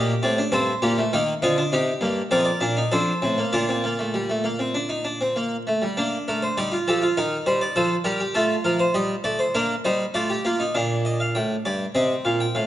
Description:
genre	classical, baroque-style 4-part fugue for harpsichord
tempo	100 BPM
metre	4/4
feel	straight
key	Bb major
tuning	A4 = 435 Hz
part	harpsichord	solo	0.0-12.7 s	F2 to G5	-20 LUFS	equal	none
room	moderate recital hall reverb, RT60 1.5 s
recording	nothing above 10.5 kHz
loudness	-20 LUFS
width	side -13 dB against mid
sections	0.0-6.0 A section; 6.0-10.8 B section; 10.8-12.7 A section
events	none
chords	0.0 Gm; 1.1 Cm; 2.3 Bb/F; 2.9 F; 3.5 Bb; 7.2 Cm7/Eb; 8.4 F7; 9.5 Bb; 10.8 Gm7/Bb; 12.0 Cm

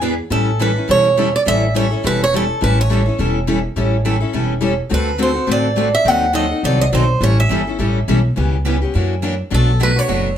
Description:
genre	acoustic string swing (jazz manouche)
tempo	209 BPM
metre	4/4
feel	swing 58% on 8ths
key	A mixolydian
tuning	A4 = 438 Hz
part	picked steel-string acoustic guitar	accompaniment	0.0-10.3 s	B2 to A4	-21 LUFS	left 6 dB	none
part	picked steel-string acoustic guitar	accompaniment	0.0-10.3 s	B2 to B4	-23 LUFS	right 5 dB	none
part	upright bass	bass	0.0-10.4 s	E1 to F#2	-18 LUFS	equal	none
part	picked swing-style acoustic guitar	melody	0.3-10.4 s	A4 to F#5	-18 LUFS	right 3 dB	none
room	moderate studio reverb, RT60 0.5 s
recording	none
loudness	-14 LUFS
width	side -9 dB against mid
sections	0.3-10.4 A section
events	none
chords	0.3 A7; 4.9 D7; 6.1 D#dim7; 7.2 A7; 8.4 C#m7b5; 8.9 F#aug7; 9.5 Bm7

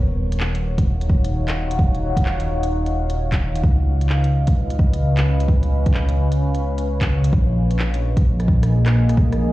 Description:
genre	future garage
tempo	130 BPM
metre	4/4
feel	swing 64% on 16ths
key	Eb minor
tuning	A4 = 441 Hz
part	deep dark ambient pad	sustained chords	0.0-9.5 s	Bb3 to Gb5	-26 LUFS	left 1 dB	chorus, built-in reverb, sidechain pumping
part	dark detuned saw bass	bass	0.0-9.5 s	Eb1 to Db2	-19 LUFS	equal	sidechain pumping
part	organic electronic drum kit	drums	0.3-9.4 s	handclaps, hi-hat, rim click	-30 LUFS	equal	none
part	electronic kick drum	drums	0.8-9.3 s	none	-18 LUFS	equal	none
room	little or no reverb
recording	played on a big sound system in a bare room, cassette tape, large studio reverb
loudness	-16 LUFS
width	side -17 dB against mid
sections	0.0-9.5 A section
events	none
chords	0.0 Ebm9; 3.6 Db9; 7.3 Bb7sus4

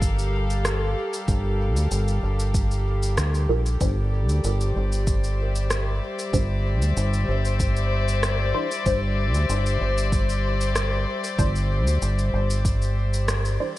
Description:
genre	ambient dub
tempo	95 BPM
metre	4/4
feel	straight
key	unclear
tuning	A4 = 440 Hz
part	dark chamber string section	sustained chords	0.0-13.8 s	G3 to F5	-28 LUFS	left 2 dB	vintage 12-bit sampler grit
part	deep dub fingered electric bass	bass	0.0-13.6 s	G1 to D2	-23 LUFS	equal	none
part	electronic kick drum	drums	0.0-12.8 s	none	-25 LUFS	equal	none
part	electronic shaker and rim click	drums	0.0-13.6 s	none	-31 LUFS	equal	none
part	filtered dub chord stab	stabs	3.5-13.7 s	E3 to C5	-32 LUFS	equal	phaser, wide subtle chorus, dub echo
room	digital ambience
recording	none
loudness	-21 LUFS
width	side -16 dB against mid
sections	0.0-13.8 A section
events	filter sweep on synth stab 0.0-13.8; band accent 13.3-13.6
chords	0.0 Gm7; 3.8 Cadd9/G

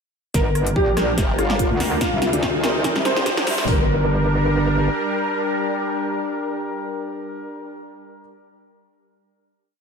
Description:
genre	heavy wobble dubstep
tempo	144 BPM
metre	4/4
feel	swing 54% on 16ths, half-time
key	G minor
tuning	A4 = 443 Hz
part	warm baby grand piano	melody	0.3-8.2 s	F4 to C5	-25 LUFS	equal	ensemble chorus, diffuse ambient delay
part	supersaw pad	sustained chords	0.3-7.8 s	C3 to Bb4	-26 LUFS	right 2 dB	ensemble chorus, sidechain pumping
part	metallic wobble bass	bass	0.3-4.9 s	G1 to D2	-21 LUFS	equal	chorus, overdrive
part	big-room dance drum kit	drums	0.3-3.7 s	hi-hat, rim click, snare drum	-25 LUFS	equal	overdrive
part	dubstep drum kit	drums	0.3-3.8 s	hi-hat, kick drum	-24 LUFS	equal	none
part	riser	sound effects	1.5-3.7 s	none	-31 LUFS	equal	none
part	formant-sweep wobble bass	bass	1.2-3.5 s	F1 to D2	-24 LUFS	equal	chorus, overdrive
part	mellow brass ensemble	stabs	1.8-7.8 s	D4 to Eb5	-28 LUFS	left 2 dB	diffuse ambient delay
room	moderate lush hall reverb, RT60 2.1 s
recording	dreamy mix soaked in reverb, high-pass filter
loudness	-18 LUFS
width	side -5 dB against mid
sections	0.3-3.7 build; 3.7-7.0 final chord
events	build-up 0.3-3.7; drum fill 0.3-3.7; filter sweep 0.3-3.7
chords	0.3 Gm; 2.0 Cm; 3.7 Gm

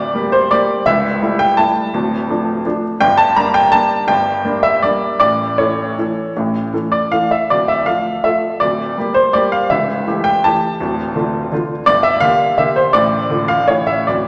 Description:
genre	classical, piano waltz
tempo	150-174 BPM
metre	3/4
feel	rubato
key	D minor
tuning	A4 = 443 Hz
part	clear upright piano	solo	0.0-14.3 s	C#1 to Bb5	-16 LUFS	equal	none
room	wet scoring stage reverb, RT60 2.0 s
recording	none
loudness	-15 LUFS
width	mono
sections	0.0-14.3 A section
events	none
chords	0.0 Gm/D; 0.9 A7/C#; 1.9 Dm; 3.0 Gm; 5.2 A; 7.5 Dm; 8.6 Gm/D; 9.7 A7/C#; 10.8 Dm; 11.9 Gm; 12.9 Dm/A; 13.7 A

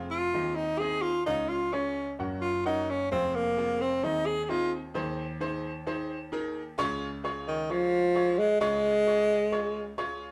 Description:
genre	soul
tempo	131 BPM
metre	4/4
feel	straight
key	Db major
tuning	A4 = 443 Hz
part	clear grand piano	accompaniment	0.0-10.3 s	F1 to Gb5	-36 LUFS	equal	none
part	breathy tenor saxophone	melody	0.1-9.9 s	Eb3 to Ab4	-28 LUFS	equal	none
room	moderate studio reverb, RT60 0.9 s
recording	band playing live in one room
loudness	-29 LUFS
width	mono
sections	0.0-4.9 A section; 4.9-6.8 B section; 6.8-10.3 C section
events	tenor saxophone solo 0.0-4.9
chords	0.3 Ab/Eb; 1.3 Db; 2.2 Gb; 3.1 Fm; 4.0 Ab/Eb; 6.8 Db

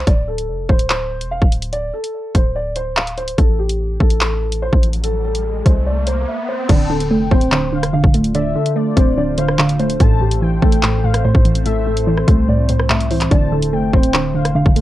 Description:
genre	hip hop, drill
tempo	145 BPM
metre	4/4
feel	half-time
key	D minor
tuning	A4 = 440 Hz
part	dark concert grand piano	melody	0.0-14.7 s	G4 to F5	-23 LUFS	equal	none
part	hard-hitting 808-style bass	bass	0.0-14.8 s	D1 to C2	-20 LUFS	equal	none
part	drill drum kit	drums	0.1-14.8 s	crash cymbal, handclaps, hi-hat, kick drum, rim click	-15 LUFS	equal	vintage 12-bit sampler grit, cassette tape
part	riser	sound effects	4.3-6.7 s	none	-28 LUFS	left 2 dB	none
part	warm velvety synth lead	second line	6.7-14.5 s	C5 to A5	-27 LUFS	left 10 dB	chorus, tremolo, cassette tape, analog delay
part	glassy wavetable pluck	accompaniment	6.7-14.8 s	A2 to C4	-17 LUFS	right 1 dB	chorus, cassette tape
part	deep dark ambient pad	sustained chords	7.9-14.8 s	A3 to C5	-28 LUFS	equal	chorus, built-in reverb, tremolo, cassette tape
room	little or no reverb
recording	home recording on cassette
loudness	-14 LUFS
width	side -14 dB against mid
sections	0.0-6.7 A section; 6.7-14.8 B section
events	riser 4.3-6.7; break 6.3-6.7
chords	0.1 D7(no3); 3.4 Am; 6.7 Dm7; 10.0 Am; 13.3 Dm7

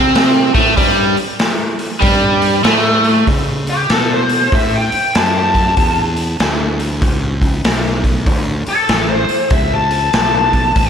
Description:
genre	blues rock power trio and southern rock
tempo	96 BPM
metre	4/4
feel	swing 64% on 8ths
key	unclear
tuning	A4 = 441 Hz
part	crunchy overdriven guitar	riff	0.0-3.3 s	G3 to C4	-14 LUFS	right 1 dB	none
part	fuzz fingered electric bass	bass	0.0-10.9 s	A1 to C#3	-19 LUFS	equal	overdrive
part	raw garage drum kit	drums	0.2-10.9 s	hi-hat, kick drum, snare drum	-16 LUFS	equal	none
part	bluesy overdriven lead guitar	melody	3.7-10.9 s	G4 to A5	-15 LUFS	left 2 dB	wah, distortion
room	moderate lush hall reverb, RT60 2.7 s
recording	big arena sound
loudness	-12 LUFS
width	side -7 dB against mid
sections	0.0-3.3 A section; 3.3-10.9 B section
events	lead electric guitar solo 3.3-10.9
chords	0.0 N.C.; 3.3 A; 8.3 D5

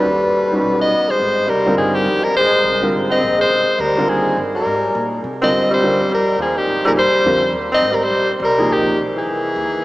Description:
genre	modal jazz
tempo	208 BPM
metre	4/4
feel	swing 60% on 8ths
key	Ab lydian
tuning	A4 = 436 Hz
part	bright soprano saxophone	melody	0.0-9.8 s	G4 to Eb5	-16 LUFS	left 1 dB	none
part	warm tenor saxophone	second line	0.0-9.8 s	Eb3 to C4	-20 LUFS	equal	none
part	clear baby grand piano	accompaniment	0.0-9.0 s	C3 to B4	-22 LUFS	right 1 dB	none
part	upright bass	bass	0.0-9.8 s	G1 to C3	-31 LUFS	equal	none
room	wet cathedral reverb, RT60 5.6 s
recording	in a vast, echoing space, small speaker sound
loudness	-14 LUFS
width	side -18 dB against mid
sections	0.0-1.2 A section; 1.2-9.8 B section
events	none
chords	0.0 Eb7alt; 1.2 Abmaj9; 5.8 Ebadd9; 9.3 Caug

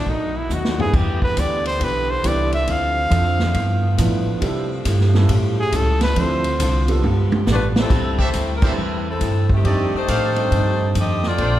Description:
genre	jazz, big band swing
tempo	138 BPM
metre	4/4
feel	swing 65% on 8ths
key	C major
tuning	A4 = 440 Hz
part	clear trumpet	melody	0.0-6.9 s	D4 to F5	-23 LUFS	equal	none
part	warm saxophone section	sustained chords	0.0-7.9 s	D3 to G4	-30 LUFS	right 2 dB	none
part	upright bass	bass	0.0-11.6 s	G1 to C3	-20 LUFS	equal	none
part	vintage hollow-body jazz guitar	accompaniment	0.1-11.6 s	F2 to C5	-29 LUFS	left 3 dB	none
part	swinging big-band drum kit	drums	0.1-11.5 s	crash cymbal, hi-hat, kick drum, ride cymbal, snare drum, toms	-24 LUFS	equal	none
part	warm concert grand piano	accompaniment	0.8-10.9 s	F3 to D5	-27 LUFS	right 3 dB	none
part	clear saxophone section	melody	7.5-11.6 s	Eb3 to Eb5	-22 LUFS	left 2 dB	none
part	bright trumpet section	stabs	8.2-11.6 s	F4 to F5	-29 LUFS	right 1 dB	none
room	wet scoring stage reverb, RT60 2.0 s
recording	heard from further back in the room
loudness	-16 LUFS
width	side -13 dB against mid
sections	0.0-7.9 A section; 7.9-11.6 B section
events	trumpet solo 0.0-7.9; drum fill 0.5-0.9, 7.0-7.9; band accent 8.6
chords	0.1 B7; 0.9 Em7; 2.7 Dm9; 3.5 G13; 4.4 C6; 5.3 A7; 6.2 Dm7; 7.0 G9; 7.9 C6; 9.6 F13

